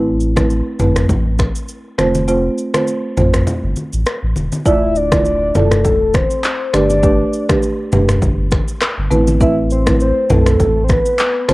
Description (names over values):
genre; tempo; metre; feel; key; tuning
afrobeats; 101 BPM; 4/4; swing 55% on 16ths; D dorian; A4 = 440 Hz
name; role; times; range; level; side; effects
marimba with medium mallets; accompaniment; 0.0-11.5 s; A3 to D5; -18 LUFS; right 2 dB; cassette tape
sub bass with octave; bass; 0.0-11.5 s; D1 to B1; -18 LUFS; equal; none
deep house drum kit; drums; 0.2-11.5 s; finger snaps, handclaps, kick drum, rim click, shaker, toms; -17 LUFS; equal; cassette tape
congas; percussion; 0.4-11.5 s; none; -22 LUFS; left 1 dB; none
soft octave-layered synth lead; melody; 4.7-11.5 s; A4 to E5; -17 LUFS; left 1 dB; chorus, phaser, cassette tape
room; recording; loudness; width
little or no reverb; home recording on cassette; -13 LUFS; side -20 dB against mid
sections
0.0-4.7 A section; 4.7-11.5 B section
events
kick muted 2.3-4.7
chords
0.0 Amadd9; 2.0 F; 4.7 Dmadd9; 6.7 Gadd9; 9.1 Amadd9